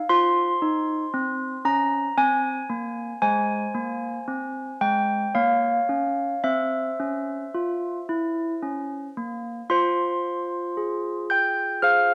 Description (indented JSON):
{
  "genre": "classical, tune for handbells",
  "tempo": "57 BPM",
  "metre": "3/4",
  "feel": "straight",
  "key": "F minor",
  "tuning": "A4 = 440 Hz",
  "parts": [
    { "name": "handbells", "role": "solo", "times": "0.0-12.1 s", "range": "Ab3 to G6", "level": "-24 LUFS", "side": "equal", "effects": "none" }
  ],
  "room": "moderate recital hall reverb, RT60 1.6 s",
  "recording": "none",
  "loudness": "-25 LUFS",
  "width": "mono",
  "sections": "0.0-9.7 A section; 9.7-12.1 B section",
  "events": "none",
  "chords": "0.1 Fm; 3.2 Abmaj9; 5.3 Bbm; 6.4 C; 9.7 Fm"
}